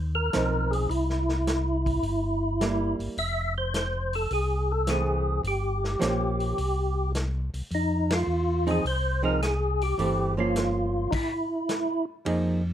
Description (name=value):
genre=soul jazz organ trio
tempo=106 BPM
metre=4/4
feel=swing 69% on 8ths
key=F minor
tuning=A4 = 439 Hz
part: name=mellow tonewheel organ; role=bass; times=0.0-12.7 s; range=F1 to F2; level=-28 LUFS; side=equal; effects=slow rotary speaker
part: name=percussive tonewheel organ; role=melody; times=0.1-12.1 s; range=Eb4 to E5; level=-28 LUFS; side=equal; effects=slow rotary speaker, chorus vibrato
part: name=archtop guitar, miked and amplified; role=accompaniment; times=0.3-12.6 s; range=E3 to Ab4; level=-29 LUFS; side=right 3 dB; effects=none
part: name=vintage drum kit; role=drums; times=0.3-12.4 s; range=crash cymbal, hi-hat, kick drum, ride cymbal, snare drum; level=-34 LUFS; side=equal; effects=none
room=light reverb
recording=close, detailed microphones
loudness=-24 LUFS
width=side -10 dB against mid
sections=0.0-12.3 A section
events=band accent 8.0; stop 11.1-12.3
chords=0.0 Ab6; 0.9 C7; 3.2 Fmaj7; 5.4 Gm7b5; 6.6 C5; 7.7 Fm7; 10.0 Gm7b5; 11.1 N.C.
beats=0.34 | 0.91 1.47 2.04 2.61 | 3.18 3.74 4.31 4.88 | 5.45 6.01 6.58 7.15 | 7.72 8.28 8.85 9.42 | 9.99 10.55 11.12 11.69 | 12.26